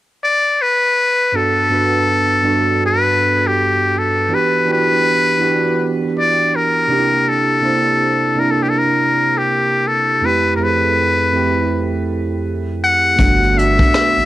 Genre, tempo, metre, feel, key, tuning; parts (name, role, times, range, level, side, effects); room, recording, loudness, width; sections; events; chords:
R&B, neo-soul; 81 BPM; 4/4; swing 63% on 16ths; G major; A4 = 440 Hz
trumpet with metal mute; melody; 0.2-14.3 s; G4 to F#5; -15 LUFS; left 2 dB
tine electric piano; accompaniment; 1.3-14.3 s; F2 to C5; -18 LUFS; right 3 dB; lush chorus, cassette tape
rubbery square bass; bass; 13.2-14.2 s; G1 to A1; -17 LUFS; equal
vintage brush drum kit; drums; 13.2-14.3 s; hi-hat, kick drum, rim click; -16 LUFS; equal
little or no reverb; home recording on cassette; -13 LUFS; side -15 dB against mid
0.0-1.3 A section; 1.3-14.3 B section
0.0 N.C.; 1.3 Gmaj9; 4.3 Em9; 6.9 C9; 10.2 Fmaj9; 13.2 Gmaj9